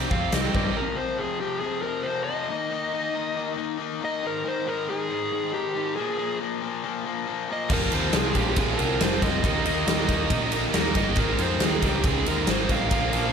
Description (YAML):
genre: quiet-loud alternative rock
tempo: 138 BPM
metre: 4/4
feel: straight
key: F minor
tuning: A4 = 439 Hz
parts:
  - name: cranked stack guitar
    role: riff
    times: 0.0-13.3 s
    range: F2 to Eb4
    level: -30 LUFS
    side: left 9 dB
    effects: overdrive
  - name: heavy high-gain guitar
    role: riff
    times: 0.0-0.8, 7.7-13.3 s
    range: Ab2 to G4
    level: -29 LUFS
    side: right 12 dB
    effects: distortion, slapback echo
  - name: growling picked electric bass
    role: bass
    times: 0.0-0.7, 7.7-13.3 s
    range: F1 to G2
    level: -29 LUFS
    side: equal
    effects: overdrive
  - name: huge arena drum kit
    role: drums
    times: 0.0-0.6, 7.7-13.2 s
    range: crash cymbal, hi-hat, kick drum, ride cymbal, snare drum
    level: -25 LUFS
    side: equal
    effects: none
  - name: dark smooth lead guitar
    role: melody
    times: 0.1-13.3 s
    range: G4 to F5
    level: -29 LUFS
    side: equal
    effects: overdrive, slapback echo
  - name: high-gain distorted guitar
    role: riff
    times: 7.7-13.3 s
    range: F2 to Eb4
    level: -32 LUFS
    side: equal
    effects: distortion
room: moderate recital hall reverb, RT60 1.5 s, small room ambience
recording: big arena sound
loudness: -23 LUFS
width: side -6 dB against mid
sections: 0.8-13.3 A section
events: none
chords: 0.0 Cm; 0.8 F5; 2.5 Eb5; 4.2 Ab5; 6.0 Bb5; 7.7 Fm; 9.4 Eb; 11.2 Ab